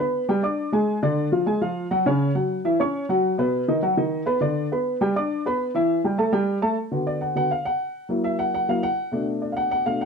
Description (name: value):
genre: jazz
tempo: 204 BPM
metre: 4/4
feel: straight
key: D major from 6.8 s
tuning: A4 = 444 Hz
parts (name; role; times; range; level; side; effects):
- dark upright piano; solo; 0.0-10.1 s; B2 to D6; -21 LUFS; equal; none
room: moderate club reverb, RT60 0.7 s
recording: dark, warm production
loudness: -21 LUFS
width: side -5 dB against mid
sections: 0.0-6.8 A section; 6.8-10.1 B section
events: upright piano solo 6.8-10.1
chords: 0.0 G#dim; 0.9 Ddim; 1.5 Fm; 2.1 F#5; 3.2 B; 4.4 G/D; 5.6 Em; 6.2 Gsus2; 6.8 D6; 8.0 F#7; 9.1 Bm7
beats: 0.28 0.58 | 0.87 1.17 1.46 1.76 | 2.05 2.35 2.64 2.94 | 3.23 3.53 3.82 4.12 | 4.41 4.71 5.00 5.30 | 5.59 5.89 6.18 6.48 | 6.77 7.07 7.36 7.66 | 7.95 8.24 8.54 8.83 | 9.13 9.42 9.72 10.01